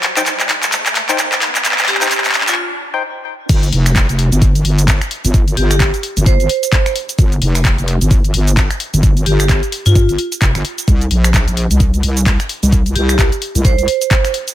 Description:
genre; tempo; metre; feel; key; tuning
bass house; 130 BPM; 4/4; swing 59% on 16ths; unclear; A4 = 441 Hz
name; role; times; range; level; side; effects
house drum kit; drums; 0.0-14.5 s; cabasa, crash cymbal, finger snaps, handclaps, hi-hat; -17 LUFS; equal; high-pass filter on hats, high-pass filter on perc, high-pass filter on snare, high-pass filter on cymbals, high-pass filter on room
riser; sound effects; 0.0-2.6 s; none; -26 LUFS; equal; none
percussive organ stab; stabs; 0.2-3.0 s; Eb4 to G5; -23 LUFS; left 4 dB; chorus, sidechain pumping, ping-pong delay
vibraphone with hard mallets; melody; 1.9-2.6, 5.6-10.2, 13.0-14.3 s; F4 to C5; -20 LUFS; right 3 dB; ping-pong delay
wobble bass; bass; 3.5-13.9 s; F1 to G2; -14 LUFS; equal; chorus, sidechain pumping
electronic kick drum; drums; 3.5-14.2 s; none; -13 LUFS; equal; none
room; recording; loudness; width
digital ambience; high-pass filter; -12 LUFS; side -13 dB against mid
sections
0.0-3.5 A section; 3.5-14.5 B section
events
build-up 0.0-3.5; drum fill 0.0-2.6; riser 0.0-2.6; filter sweep 0.0-3.5; break 2.6-3.5; drop 3.5-14.5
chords
0.0 Cm; 3.5 Fsus2; 10.9 Bbsus2

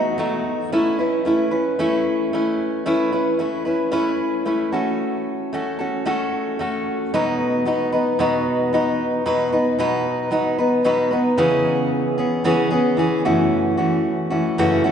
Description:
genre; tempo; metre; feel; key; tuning
pop; 112 BPM; 4/4; swing 55% on 16ths; unclear; A4 = 441 Hz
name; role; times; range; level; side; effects
fingerpicked steel-string acoustic guitar; solo; 0.0-14.9 s; F#2 to B4; -18 LUFS; equal; none
room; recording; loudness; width
wet church reverb, RT60 3.6 s; recorded in a church or concert hall, nothing above 11.0 kHz; -18 LUFS; side -8 dB against mid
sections
0.7-9.3 A section; 9.3-11.4 B section; 11.4-14.9 C section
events
none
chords
0.0 B7 (rootless); 0.7 Aadd9; 4.7 F#m/A; 7.1 B; 11.4 C#m7; 13.3 F#m7

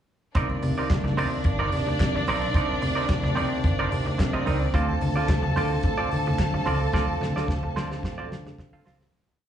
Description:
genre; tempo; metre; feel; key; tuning
disco; 109 BPM; 4/4; straight; C dorian; A4 = 440 Hz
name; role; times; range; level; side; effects
clear studio string section; second line; 0.3-9.1 s; D4 to A5; -30 LUFS; equal; slapback echo
tonewheel organ; sustained chords; 0.3-9.1 s; C3 to F4; -33 LUFS; right 1 dB; stopped rotary speaker
warm soul drum kit; drums; 0.3-9.1 s; handclaps, hi-hat, kick drum, snare drum; -28 LUFS; equal; none
semi-hollow electric guitar; accompaniment; 0.4-9.1 s; C4 to F5; -30 LUFS; right 5 dB; slapback echo
picked electric bass with an envelope filter; bass; 0.4-9.0 s; G1 to D3; -28 LUFS; equal; none
congas; percussion; 0.4-9.0 s; none; -33 LUFS; left 3 dB; none
room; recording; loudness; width
light reverb; live gig heard through the venue's PA, club reverb; -22 LUFS; side -10 dB against mid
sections
0.4-9.1 groove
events
fade-out 6.9-9.1; drum fill 6.9-9.1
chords
0.4 Cm9; 4.7 Dm7

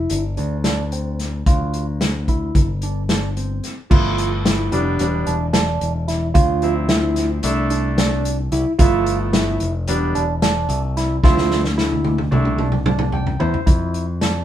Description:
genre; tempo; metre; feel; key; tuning
progressive instrumental, band music in an uneven meter; 221 BPM (eighths); 9/8; straight; G mixolydian; A4 = 437 Hz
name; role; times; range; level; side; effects
barky tine electric piano; arpeggios; 0.0-14.4 s; C4 to F4; -23 LUFS; right 3 dB; phaser
modern bright picked electric bass; bass; 0.0-14.4 s; E1 to F2; -22 LUFS; left 1 dB; none
vintage drum kit; drums; 0.1-14.3 s; crash cymbal, hi-hat, kick drum, snare drum, toms; -19 LUFS; equal; none
clear grand piano; accompaniment; 3.9-13.6 s; F3 to G5; -23 LUFS; right 1 dB; none
room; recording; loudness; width
moderate studio reverb, RT60 0.8 s; band playing live in one room; -17 LUFS; side -11 dB against mid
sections
0.0-3.9 A section; 3.9-13.7 B section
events
drum fill 11.2-13.7; grand piano fill 12.9-13.7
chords
0.1 Gsus4; 1.5 Dm; 2.5 Gsus4; 3.9 G13; 5.0 Em7; 6.4 Dm7; 7.4 C6; 8.8 G13; 9.9 Em7; 11.2 Dm7; 12.3 C6; 13.7 Dmadd9/F

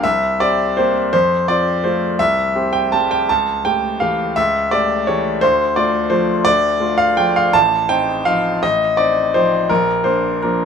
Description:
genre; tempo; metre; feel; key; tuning
classical, piano waltz; 155-180 BPM; 3/4; rubato; unclear; A4 = 443 Hz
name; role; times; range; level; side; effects
bright grand piano; solo; 0.0-10.7 s; A1 to A5; -14 LUFS; equal; none
room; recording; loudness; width
light reverb; minimal, uncompressed stereo recording; -14 LUFS; side -6 dB against mid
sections
0.0-10.7 A section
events
none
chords
0.0 C7; 1.1 F; 2.2 C; 3.3 A7/C#; 5.4 Dm7; 7.5 F7/A; 9.7 Bb

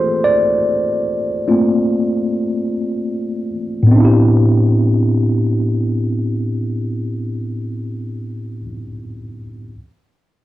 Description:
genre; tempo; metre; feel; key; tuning
hip hop; free time; none; none; A minor; A4 = 440 Hz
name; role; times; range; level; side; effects
mellow tine electric piano; accompaniment; 0.0-9.7 s; A2 to D5; -15 LUFS; equal; medium stereo tremolo, cassette tape
room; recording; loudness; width
wet studio reverb, RT60 0.5 s; cassette tape; -14 LUFS; side -15 dB against mid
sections
0.0-3.9 A section; 3.9-7.2 B section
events
tine electric piano solo 0.0-3.9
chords
0.0 Gm11; 3.9 Am11

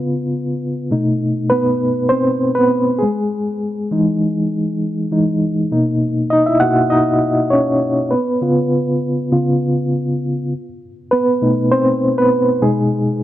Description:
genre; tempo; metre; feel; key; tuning
soul; 100 BPM; 4/4; swing 54% on 16ths; B major; A4 = 442 Hz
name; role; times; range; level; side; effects
mellow reed electric piano; solo; 0.0-13.2 s; B2 to F#5; -14 LUFS; equal; medium tremolo
room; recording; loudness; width
light reverb, digital ambience; none; -14 LUFS; side -13 dB against mid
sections
0.0-13.2 A section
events
reed electric piano solo 0.0-13.2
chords
0.0 C#7; 0.9 B7b9; 3.0 Emaj7; 5.7 Bmaj7; 8.1 C#7; 10.5 B7b9; 12.6 B6

